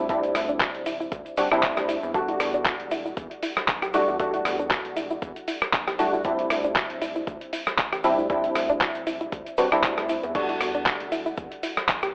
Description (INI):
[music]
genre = deep house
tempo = 117 BPM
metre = 4/4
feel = swing 55% on 16ths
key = E minor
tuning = A4 = 441 Hz
[part]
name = percussive organ stab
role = stabs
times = 0.0-12.1 s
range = G3 to F#4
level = -28 LUFS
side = equal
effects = ensemble chorus, sidechain pumping, analog delay
[part]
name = rubbery square bass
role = bass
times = 0.0-12.1 s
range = D1 to E2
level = -42 LUFS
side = equal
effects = sidechain pumping
[part]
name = dusty soul sampler-style drum kit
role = drums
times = 0.1-12.1 s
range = crash cymbal, handclaps, hi-hat, rim click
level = -29 LUFS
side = equal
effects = overdrive
[part]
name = electronic kick drum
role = drums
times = 0.1-12.0 s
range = none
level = -36 LUFS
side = equal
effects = none
[part]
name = egg shaker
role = percussion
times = 0.1-12.1 s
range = none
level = -53 LUFS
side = equal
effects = none
[part]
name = soft round pluck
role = arpeggios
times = 0.2-12.1 s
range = B3 to B4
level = -32 LUFS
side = equal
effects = chorus, sidechain pumping, tape echo
[sound]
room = light reverb, digital ambience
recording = dry, gritty hardware recording, telephone sound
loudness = -25 LUFS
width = mono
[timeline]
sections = 0.0-12.1 A section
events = none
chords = 0.0 D9sus4; 2.1 Em11; 6.2 D9sus4; 10.3 Em11